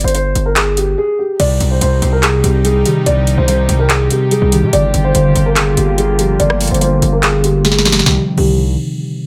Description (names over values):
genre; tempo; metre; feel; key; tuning
hip hop, trap; 144 BPM; 4/4; half-time; C minor; A4 = 439 Hz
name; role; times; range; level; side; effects
dark concert grand piano; melody; 0.0-8.6 s; G4 to D5; -19 LUFS; equal; low-pass filter
distorted 808-style bass; bass; 0.0-8.8 s; G1 to C3; -18 LUFS; equal; distortion
booming analog drum machine; drums; 0.0-8.5 s; crash cymbal, handclaps, hi-hat, rim click, snare drum; -19 LUFS; equal; none
concert harp; accompaniment; 1.4-8.6 s; C3 to C4; -18 LUFS; equal; low-pass filter
warm studio string section; sustained chords; 1.4-8.3 s; C3 to G4; -26 LUFS; equal; low-pass filter
room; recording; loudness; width
small room reverb; none; -13 LUFS; mono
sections
0.0-1.4 A section; 1.4-8.1 B section; 8.1-9.3 C section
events
break 1.0-1.4; filter sweep 1.4-8.1; drum fill 7.6-8.1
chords
0.0 Gsus4; 1.4 Cm; 4.7 Gm7; 8.1 Cm